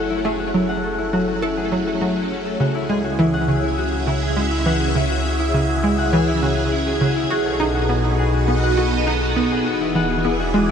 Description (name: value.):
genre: ambient, sequencer-driven space music.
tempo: 102 BPM.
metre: 4/4.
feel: straight.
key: unclear.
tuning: A4 = 437 Hz.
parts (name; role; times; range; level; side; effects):
phased string machine; sustained chords; 0.0-10.7 s; B2 to F#5; -23 LUFS; right 1 dB; ensemble chorus, phaser.
concert harp; arpeggios; 0.0-10.7 s; C#4 to F#5; -23 LUFS; left 3 dB; auto-pan, tape echo.
hollow square pluck; riff; 0.0-10.7 s; C#3 to A4; -22 LUFS; right 1 dB; wide subtle chorus, tape echo.
warm sub bass; bass; 0.0-10.7 s; E1 to C#2; -25 LUFS; equal; none.
room: wet huge ambient reverb, RT60 8.6 s.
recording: none.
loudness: -17 LUFS.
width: side -7 dB against mid.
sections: 0.0-10.7 A section.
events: fade-in on string machine 0.0-10.7; fade-in on sub bass 0.0-10.7.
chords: 0.0 F#m; 2.6 C#m; 7.3 B; 9.7 E7.